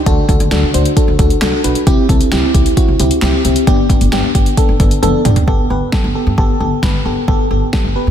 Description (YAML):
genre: synth-pop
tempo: 133 BPM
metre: 4/4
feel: straight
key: G major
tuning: A4 = 440 Hz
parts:
  - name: mellow FM electric piano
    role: accompaniment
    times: 0.0-8.1 s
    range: B3 to C5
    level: -15 LUFS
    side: equal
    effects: chorus, phaser
  - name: upright bass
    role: bass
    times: 0.1-8.1 s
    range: E1 to D3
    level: -17 LUFS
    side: equal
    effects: none
  - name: deep house drum kit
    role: drums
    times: 0.1-7.8 s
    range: handclaps, hi-hat, kick drum, snare drum, toms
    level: -14 LUFS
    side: equal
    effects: overdrive
room: light reverb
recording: dense, heavily limited modern master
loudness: -11 LUFS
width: side -9 dB against mid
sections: 0.0-5.5 A section; 5.5-8.1 B section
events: drum fill 5.0-5.5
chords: 0.1 D; 1.9 C; 3.7 G; 5.5 Gadd9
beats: | 0.06 0.52 0.97 1.42 | 1.87 2.32 2.77 3.22 | 3.67 4.12 4.58 5.03 | 5.48 5.93 6.38 6.83 | 7.28 7.73